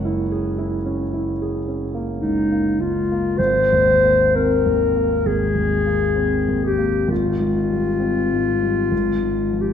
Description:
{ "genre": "classical, impressionist duo for clarinet and grand piano", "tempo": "48-69 BPM", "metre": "4/4", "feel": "rubato", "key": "unclear", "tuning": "A4 = 436 Hz", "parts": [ { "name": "warm concert grand piano", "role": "accompaniment", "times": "0.0-9.7 s", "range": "Gb1 to Gb5", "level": "-21 LUFS", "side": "right 1 dB", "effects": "none" }, { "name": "dark clarinet", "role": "melody", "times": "2.2-9.7 s", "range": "Eb4 to C5", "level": "-18 LUFS", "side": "left 3 dB", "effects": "none" } ], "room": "wet recital hall reverb, RT60 1.6 s", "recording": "heard from further back in the room", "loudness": "-17 LUFS", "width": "side -8 dB against mid", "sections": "0.0-3.4 A section; 3.4-9.7 B section", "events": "none", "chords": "0.0 Gb9; 3.4 Abadd9; 7.1 Fmadd9/Ab; 8.9 Db/Ab (rootless)", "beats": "0.08 1.15 2.22 | 3.38 4.35 5.26 6.19 | 7.11 8.01 8.92" }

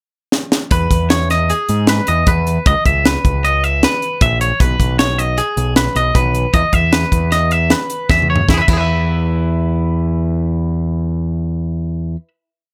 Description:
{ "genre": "math rock and midwest emo", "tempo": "154 BPM", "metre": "5/4", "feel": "straight", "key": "E major", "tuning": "A4 = 440 Hz", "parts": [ { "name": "crisp fusion drum kit", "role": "drums", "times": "0.3-8.8 s", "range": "crash cymbal, hi-hat, kick drum, snare drum, toms", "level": "-18 LUFS", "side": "equal", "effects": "none" }, { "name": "twangy electric guitar", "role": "arpeggios", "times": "0.7-12.3 s", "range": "E4 to E5", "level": "-20 LUFS", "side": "equal", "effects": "none" }, { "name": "growling picked electric bass", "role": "bass", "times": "0.7-12.2 s", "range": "A#1 to G#2", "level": "-19 LUFS", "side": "equal", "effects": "overdrive" } ], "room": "little or no reverb", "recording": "none", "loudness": "-16 LUFS", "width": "mono", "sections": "0.0-0.7 pickup bar; 0.7-8.5 A section; 8.5-12.4 final chord", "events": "drum fill 0.3-0.7, 8.1-8.5", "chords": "0.0 N.C.; 0.7 Emaj7; 2.7 C#m9; 4.6 G#m/B; 6.5 E5", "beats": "0.34 | 0.73 1.12 1.51 1.89 2.28 | 2.67 3.06 3.44 3.83 4.22 | 4.61 4.99 5.38 5.77 6.16 | 6.55 6.93 7.33 7.71 8.11 | 8.49 8.89 9.28 9.67 10.06 | 10.45 10.84 11.24 11.63 12.02" }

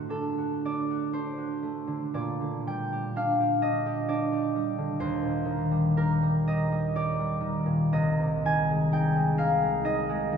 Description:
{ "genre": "classical, solo harp piece", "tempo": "52-66 BPM", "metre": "3/4", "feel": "rubato", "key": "G minor", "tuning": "A4 = 440 Hz", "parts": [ { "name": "concert harp", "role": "solo", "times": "0.0-10.4 s", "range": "C2 to Ab5", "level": "-25 LUFS", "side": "equal", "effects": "none" } ], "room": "wet cathedral reverb, RT60 5.5 s", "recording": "minimal, uncompressed stereo recording", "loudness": "-25 LUFS", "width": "side -7 dB against mid", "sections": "0.0-10.4 A section", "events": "none", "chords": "0.0 D7/A; 2.1 Gm/Bb; 5.0 Eb; 7.9 Ab/C", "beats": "0.10 1.13 | 2.14 3.17 4.09 | 5.00 5.97 6.96 | 7.93 8.92 9.84" }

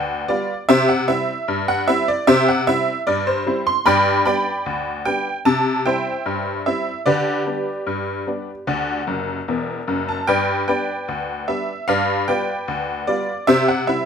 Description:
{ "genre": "ragtime piano", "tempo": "75 BPM", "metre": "2/4", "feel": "straight", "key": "G major", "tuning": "A4 = 441 Hz", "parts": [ { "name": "honky-tonk upright piano", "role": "solo", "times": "0.0-14.1 s", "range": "E1 to C6", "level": "-18 LUFS", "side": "equal", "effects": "none" } ], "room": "light reverb", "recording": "close, detailed microphones", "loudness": "-18 LUFS", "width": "side -7 dB against mid", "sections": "0.0-14.1 A section", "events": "honky-tonk piano fill 9.1-10.3", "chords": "0.0 G7; 0.7 C; 3.9 G; 5.5 C; 7.1 G/D; 8.7 D; 10.3 G; 11.9 G7; 13.5 C", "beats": "| 0.68 1.48 | 2.28 3.07 | 3.87 4.66 | 5.46 6.26 | 7.06 7.87 | 8.67 9.48 | 10.28 11.08 | 11.88 12.68 | 13.48" }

